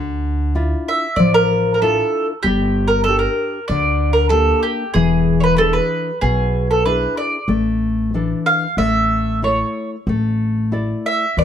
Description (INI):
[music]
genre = italian folk, Italian serenade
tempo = 94 BPM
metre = 4/4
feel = straight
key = D harmonic minor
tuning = A4 = 440 Hz
[part]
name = nylon-string guitar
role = accompaniment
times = 0.0-11.4 s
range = B2 to D5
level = -20 LUFS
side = left 3 dB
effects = none
[part]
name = upright bass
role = bass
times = 0.0-11.4 s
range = E1 to E2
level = -20 LUFS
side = right 1 dB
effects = none
[part]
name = mandolin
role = melody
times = 0.9-11.4 s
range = G4 to F5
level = -17 LUFS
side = right 1 dB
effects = plate reverb
[sound]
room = light reverb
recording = none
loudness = -15 LUFS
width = side -9 dB against mid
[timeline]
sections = 0.0-11.4 A section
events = none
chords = 0.0 Dmadd9; 2.4 Gm; 5.0 E7; 7.5 Asus4; 8.8 A; 10.1 Asus4